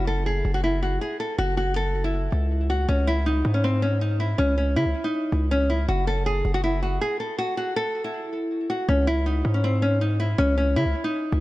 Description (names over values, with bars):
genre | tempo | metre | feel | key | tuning
hip hop, trap | 160 BPM | 4/4 | half-time | C# harmonic minor | A4 = 440 Hz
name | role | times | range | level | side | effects
nylon-string guitar | melody | 0.0-11.4 s | B#3 to A4 | -24 LUFS | equal | low-pass filter, tape echo
distorted 808-style bass | bass | 0.0-11.4 s | F#1 to C#3 | -23 LUFS | equal | distortion
room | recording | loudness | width
light reverb, small room ambience | none | -21 LUFS | side -17 dB against mid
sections
0.0-8.9 A section; 8.9-11.4 B section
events
break 7.4-8.9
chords
0.0 F#5; 2.9 C#5; 5.9 F#7(no3); 8.9 C#5